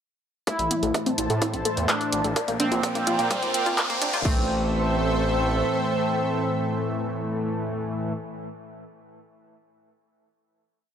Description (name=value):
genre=melodic techno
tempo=127 BPM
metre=4/4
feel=straight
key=A phrygian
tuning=A4 = 440 Hz
part: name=resonant sweep polysynth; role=melody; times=0.5-8.1 s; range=C4 to E4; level=-28 LUFS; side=right 2 dB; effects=chorus, sidechain pumping, tape echo
part: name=lush unison pad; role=sustained chords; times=0.9-8.1 s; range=A3 to A5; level=-30 LUFS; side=equal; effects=chorus, sidechain pumping
part: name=analog pluck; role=arpeggios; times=0.5-4.5 s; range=G3 to E5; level=-30 LUFS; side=equal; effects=chorus, sidechain pumping, tape echo
part: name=deep house drum kit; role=drums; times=0.5-4.3 s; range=crash cymbal, handclaps, hi-hat, toms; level=-28 LUFS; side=equal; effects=overdrive, high-pass filter on hats, high-pass filter on toms, high-pass filter on snare, high-pass filter on cymbals
part: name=electronic kick drum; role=drums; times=0.5-4.3 s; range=none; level=-28 LUFS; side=equal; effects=overdrive, high-pass filter on kick, high-pass filter on room
part: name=riser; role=sound effects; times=2.1-4.3 s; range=none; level=-33 LUFS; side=equal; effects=none
part: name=analog synth brass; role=stabs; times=0.6-8.1 s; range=A2 to Bb3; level=-29 LUFS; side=left 1 dB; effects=chorus, cassette tape, sidechain pumping, tape echo
part: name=gritty driven synth bass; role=bass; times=0.6-5.6 s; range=A1 to Bb2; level=-29 LUFS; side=equal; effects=sidechain pumping
room=light reverb, digital ambience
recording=dry, gritty hardware recording, high-pass filter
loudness=-22 LUFS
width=side -8 dB against mid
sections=0.5-4.3 build; 4.3-8.0 final chord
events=build-up 0.5-4.3; filter sweep on synth arpeggio sound 0.5-4.3; filter sweep on analog polysynth 0.5-4.3; filter sweep on analog synth pad 0.5-4.3; filter sweep 0.5-4.3; riser 2.1-4.3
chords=0.5 Am; 2.4 Bb6; 4.3 Am